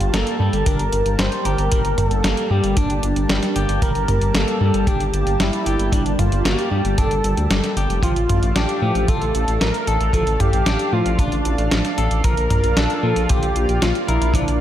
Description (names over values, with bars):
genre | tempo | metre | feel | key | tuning
synthwave | 114 BPM | 4/4 | straight | G minor | A4 = 440 Hz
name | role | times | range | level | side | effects
wide unison lead | melody | 0.0-14.6 s | D4 to C5 | -23 LUFS | right 1 dB | digital delay, slapback echo
chorused pulse-width pad | sustained chords | 0.0-14.6 s | G3 to A5 | -28 LUFS | equal | sidechain pumping
dark detuned saw bass | bass | 0.0-14.6 s | F1 to Bb2 | -21 LUFS | equal | none
detuned 8-bit digital drum machine | drums | 0.0-14.6 s | hi-hat, snare drum, toms | -23 LUFS | equal | none
electric guitar at the edge of break-up | arpeggios | 0.1-14.4 s | F3 to Bb4 | -27 LUFS | left 3 dB | digital delay, slapback echo
kick drum | drums | 0.7-14.4 s | none | -22 LUFS | equal | none
room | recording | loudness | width
moderate recital hall reverb, RT60 1.3 s | big arena sound | -16 LUFS | side -11 dB against mid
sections
0.0-14.6 A section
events
none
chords
0.0 Gmadd9; 8.0 Dm/A; 12.2 Bb